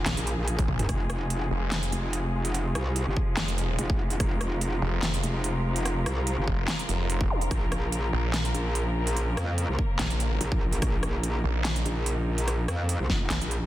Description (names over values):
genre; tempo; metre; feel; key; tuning
heavy wobble dubstep; 145 BPM; 4/4; swing 53% on 16ths, half-time; F minor; A4 = 440 Hz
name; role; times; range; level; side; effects
rich studio string section; sustained chords; 0.0-13.7 s; C3 to Bb4; -34 LUFS; equal; sidechain pumping, low-pass filter
metallic wobble bass; bass; 0.0-13.7 s; F1 to F2; -28 LUFS; equal; distortion, chorus, overdrive
snarling distorted saw bass; bass; 0.1-13.4 s; F1 to Bb1; -28 LUFS; equal; distortion, overdrive
big-room dance drum kit; drums; 0.1-13.6 s; handclaps, hi-hat, rim click, snare drum, toms; -32 LUFS; equal; none
electronic kick drum; drums; 0.6-13.2 s; none; -28 LUFS; equal; none
zap; sound effects; 7.3-7.4 s; none; -35 LUFS; equal; none
room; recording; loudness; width
light reverb; dense, heavily limited modern master; -25 LUFS; side -14 dB against mid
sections
0.0-13.7 A section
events
drum fill 0.6-0.9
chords
0.0 Bbm; 0.9 Fm; 7.5 Bbm